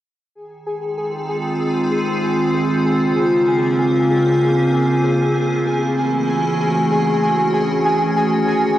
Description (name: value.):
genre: IDM.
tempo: free time.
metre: none.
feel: none.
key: F phrygian.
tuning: A4 = 440 Hz.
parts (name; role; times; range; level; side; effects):
icy glass pad; sustained chords; 1.0-8.8 s; Db3 to Ab4; -16 LUFS; equal; chorus, built-in reverb.
pulsing gated texture; texture; 0.4-8.8 s; Ab4 to Ab5; -22 LUFS; left 1 dB; chorus, built-in reverb.
room: light reverb.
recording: home recording on cassette.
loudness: -15 LUFS.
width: side -13 dB against mid.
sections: 0.3-8.8 A section.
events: none.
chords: 0.3 Fm7; 2.9 Bbm9; 5.3 Gbm9; 7.8 Ebm9.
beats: free time.